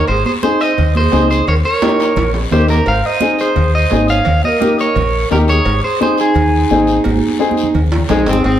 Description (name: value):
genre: latin, cumbia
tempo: 172 BPM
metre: 4/4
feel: straight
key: Ab major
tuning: A4 = 438 Hz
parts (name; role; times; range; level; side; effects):
- electric guitar at the edge of break-up; melody; 0.0-8.6 s; Ab3 to F5; -16 LUFS; equal; spring reverb
- mellow tenor recorder; second line; 0.0-8.6 s; Eb4 to Db5; -20 LUFS; right 4 dB; none
- deep dub fingered electric bass; bass; 0.1-8.6 s; Ab1 to Eb2; -15 LUFS; left 1 dB; none
- congas; percussion; 0.1-8.6 s; none; -22 LUFS; right 4 dB; none
- cowbell and timbales; percussion; 0.1-8.6 s; none; -25 LUFS; right 3 dB; none
- guiro; percussion; 0.1-8.6 s; none; -30 LUFS; left 5 dB; none
- warm upright piano; accompaniment; 0.4-8.3 s; Bb3 to Ab4; -17 LUFS; left 3 dB; none
room: wet studio reverb, RT60 0.8 s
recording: heard from further back in the room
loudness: -11 LUFS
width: side -11 dB against mid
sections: 0.0-8.4 A section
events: drum fill 1.8-2.9, 7.1-8.4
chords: 0.1 Ab; 1.5 Eb7; 2.9 Ab; 4.3 Eb7; 5.7 Ab